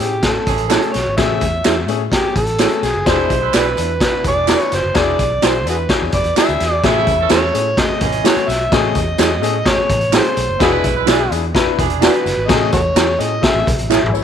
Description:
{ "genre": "uptempo 1960s-style soul", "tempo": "127 BPM", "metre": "4/4", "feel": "straight", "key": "A major", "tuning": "A4 = 440 Hz", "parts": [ { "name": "overdriven harmonica", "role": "melody", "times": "0.0-13.7 s", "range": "F#4 to E5", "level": "-19 LUFS", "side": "right 1 dB", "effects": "none" }, { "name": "clear concert grand piano", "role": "accompaniment", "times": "0.0-14.2 s", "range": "A3 to E5", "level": "-21 LUFS", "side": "left 14 dB", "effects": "none" }, { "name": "vintage muted fingered electric bass", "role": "bass", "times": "0.0-14.2 s", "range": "E1 to A2", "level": "-23 LUFS", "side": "equal", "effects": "none" }, { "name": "raw garage drum kit", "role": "drums", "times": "0.0-14.2 s", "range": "hi-hat, kick drum, snare drum, toms", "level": "-17 LUFS", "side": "equal", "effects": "none" }, { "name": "tambourine and handclaps", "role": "percussion", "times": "0.0-14.2 s", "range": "none", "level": "-29 LUFS", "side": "right 15 dB", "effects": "none" }, { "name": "clear horn section", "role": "second line", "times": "0.5-12.2 s", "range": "B2 to B4", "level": "-24 LUFS", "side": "right 13 dB", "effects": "slapback echo" }, { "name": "mellow electric guitar", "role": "stabs", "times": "0.7-14.0 s", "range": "E4 to D5", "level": "-22 LUFS", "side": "right 13 dB", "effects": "none" }, { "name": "clean electric guitar", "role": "riff", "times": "5.9-6.8 s", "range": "G#4 to C#5", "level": "-28 LUFS", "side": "left 15 dB", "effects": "none" } ], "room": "light reverb, small room reverb", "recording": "1960s-style stereo with parts hard left and right", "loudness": "-13 LUFS", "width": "side -8 dB against mid", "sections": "0.0-14.2 A section", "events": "harmonica solo 0.0-14.2; drum fill 13.9-14.2", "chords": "0.0 Amaj7; 3.1 E7; 6.8 Amaj7; 10.6 E7; 12.5 Amaj7", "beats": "0.24 0.71 | 1.18 1.65 2.12 2.60 | 3.07 3.54 4.01 4.48 | 4.95 5.42 5.89 6.37 | 6.84 7.31 7.78 8.25 | 8.72 9.19 9.66 10.13 | 10.60 11.07 11.55 12.02 | 12.49 12.96 13.43 13.90" }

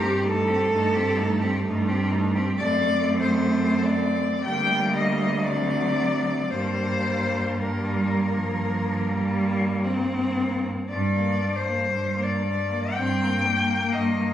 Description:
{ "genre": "classical, lyrical piece for cello ensemble", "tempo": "54-65 BPM", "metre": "4/4", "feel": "rubato", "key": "G minor", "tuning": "A4 = 440 Hz", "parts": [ { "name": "rich cello", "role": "melody", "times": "0.0-14.3 s", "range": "G4 to G5", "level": "-26 LUFS", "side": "left 3 dB", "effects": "none" }, { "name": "rich cello", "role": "second line", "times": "0.0-14.3 s", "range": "G3 to G4", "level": "-29 LUFS", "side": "right 3 dB", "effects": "none" }, { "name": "rich cello", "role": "accompaniment", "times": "0.0-14.3 s", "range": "F3 to C4", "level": "-26 LUFS", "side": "equal", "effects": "none" }, { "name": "clear cello", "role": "bass", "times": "0.0-14.3 s", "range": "D2 to G2", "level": "-27 LUFS", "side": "right 1 dB", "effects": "none" } ], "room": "wet recital hall reverb, RT60 1.3 s", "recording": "recorded on a phone in the room, studio ambience", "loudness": "-21 LUFS", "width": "side -11 dB against mid", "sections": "0.0-10.9 A section; 10.9-14.3 B section", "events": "none", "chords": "0.0 Am7b5/G; 2.6 D7/F#; 4.5 Gm/D; 5.4 D7; 6.5 Gm", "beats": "0.71 1.66 | 2.59 3.51 4.46 5.44 | 6.51 7.62 8.73 9.82 | 10.90 11.89 12.94 13.93" }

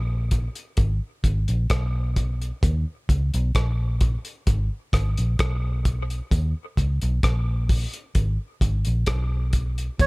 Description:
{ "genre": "dub reggae", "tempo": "65 BPM", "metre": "4/4", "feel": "straight", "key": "unclear", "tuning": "A4 = 440 Hz", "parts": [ { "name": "vintage muted fingered electric bass", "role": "bass", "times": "0.0-10.1 s", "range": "Ab1 to Eb2", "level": "-23 LUFS", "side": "equal", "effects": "none" }, { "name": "cloth-damped thuddy drum kit", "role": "drums", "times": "0.3-10.1 s", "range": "hi-hat, kick drum, rim click", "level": "-23 LUFS", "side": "equal", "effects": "none" }, { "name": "melodica", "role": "melody", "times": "10.0-10.1 s", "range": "Db5", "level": "-19 LUFS", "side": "right 4 dB", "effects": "none" } ], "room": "small room ambience", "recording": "none", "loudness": "-21 LUFS", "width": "side -26 dB against mid", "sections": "0.0-10.1 A section", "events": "break 0.0-6.3", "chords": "0.0 N.C.; 0.8 Abm; 2.6 Eb5; 4.5 Abm; 6.3 Eb5; 8.2 Abm", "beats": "0.78 1.70 | 2.62 3.54 4.47 5.39 | 6.31 7.23 8.16 9.08 | 10.00" }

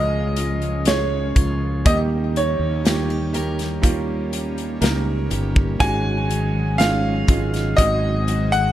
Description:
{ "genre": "pop ballad", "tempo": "61 BPM", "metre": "4/4", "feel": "straight", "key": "unclear", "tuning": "A4 = 440 Hz", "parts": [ { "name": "bright grand piano", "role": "melody", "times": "0.0-8.7 s", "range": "Db5 to Ab5", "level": "-24 LUFS", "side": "equal", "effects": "none" }, { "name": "clear upright piano", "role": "accompaniment", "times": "0.0-8.7 s", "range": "Ab2 to Bb4", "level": "-26 LUFS", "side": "right 4 dB", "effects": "none" }, { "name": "airy breathy pad", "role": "sustained chords", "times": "0.0-8.7 s", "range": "Eb3 to Ab4", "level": "-30 LUFS", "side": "equal", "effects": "chorus" }, { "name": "picked steel-string acoustic guitar", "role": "arpeggios", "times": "0.0-8.7 s", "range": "Ab2 to Bb4", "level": "-30 LUFS", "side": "left 2 dB", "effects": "none" }, { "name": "fretless electric bass", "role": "bass", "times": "0.0-8.7 s", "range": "G1 to Eb2", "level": "-23 LUFS", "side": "equal", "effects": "none" }, { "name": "modern studio drum kit", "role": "drums", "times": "0.4-8.7 s", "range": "hi-hat, kick drum, snare drum", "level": "-20 LUFS", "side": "equal", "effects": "none" } ], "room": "little or no reverb", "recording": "lossy compression artefacts", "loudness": "-18 LUFS", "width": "side -12 dB against mid", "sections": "0.0-8.7 A section", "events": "none", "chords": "0.0 Db; 1.9 Eb; 5.8 Ab7sus4; 7.8 Ab7", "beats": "0.86 | 1.86 2.85 3.83 4.81 | 5.80 6.79 7.78" }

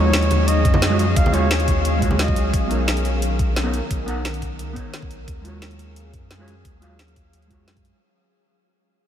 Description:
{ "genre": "liquid drum and bass", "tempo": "175 BPM", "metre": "4/4", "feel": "straight", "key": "Eb minor", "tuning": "A4 = 435 Hz", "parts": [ { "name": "warm flugelhorn", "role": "melody", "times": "0.0-2.5 s", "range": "Db5 to F5", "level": "-26 LUFS", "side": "equal", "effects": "diffuse ambient delay" }, { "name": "hollow-body jazz guitar", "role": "accompaniment", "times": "0.0-8.0 s", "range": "Ab3 to F#5", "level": "-26 LUFS", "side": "right 1 dB", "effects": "diffuse ambient delay" }, { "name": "glassy FM pad", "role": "sustained chords", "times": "0.0-8.0 s", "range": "D#3 to F5", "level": "-27 LUFS", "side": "equal", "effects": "ensemble chorus, built-in reverb, sidechain pumping" }, { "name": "warm sub bass", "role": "bass", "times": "0.0-7.9 s", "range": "B1 to Gb2", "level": "-22 LUFS", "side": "equal", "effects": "none" }, { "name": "drum and bass drum kit", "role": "drums", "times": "0.1-7.9 s", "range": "hi-hat, snare drum", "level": "-26 LUFS", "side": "equal", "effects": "overdrive" }, { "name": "congas", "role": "percussion", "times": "0.3-2.2 s", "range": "none", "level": "-29 LUFS", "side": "right 2 dB", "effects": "none" }, { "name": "electronic kick drum", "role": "drums", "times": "0.7-7.8 s", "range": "none", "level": "-22 LUFS", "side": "equal", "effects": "overdrive" } ], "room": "moderate huge ambient reverb, RT60 8.3 s", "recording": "dreamy mix soaked in reverb", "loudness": "-17 LUFS", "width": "side -10 dB against mid", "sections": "0.0-8.0 A section", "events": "fade-out 0.0-8.0", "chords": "0.0 Ebm11; 2.5 Bmaj9; 5.3 Ebm11", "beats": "0.14 0.48 0.82 | 1.16 1.51 1.85 2.19 | 2.54 2.88 3.22 3.56 | 3.91 4.25 4.59 4.93 | 5.28 5.62 5.96 6.31 | 6.65 6.99 7.33 7.68" }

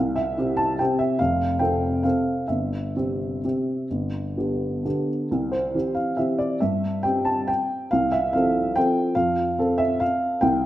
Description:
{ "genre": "classical, piano waltz", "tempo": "123-157 BPM", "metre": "3/4", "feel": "rubato", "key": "C major", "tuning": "A4 = 440 Hz", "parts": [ { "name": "dark upright piano", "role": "solo", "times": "0.0-10.7 s", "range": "F1 to A5", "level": "-21 LUFS", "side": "equal", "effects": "none" } ], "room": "wet recital hall reverb, RT60 1.4 s", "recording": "none", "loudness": "-21 LUFS", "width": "side -14 dB against mid", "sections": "0.0-10.7 A section", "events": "none", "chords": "0.0 C; 1.2 F; 2.5 C/G; 3.9 G; 5.3 C; 7.9 F/C", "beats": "0.38 0.80 | 1.21 1.61 2.04 | 2.49 2.96 3.44 | 3.90 4.37 4.85 | 5.31 5.74 6.18 | 6.61 7.04 7.49 | 7.92 8.34 8.77 | 9.17 9.59 10.01 | 10.42" }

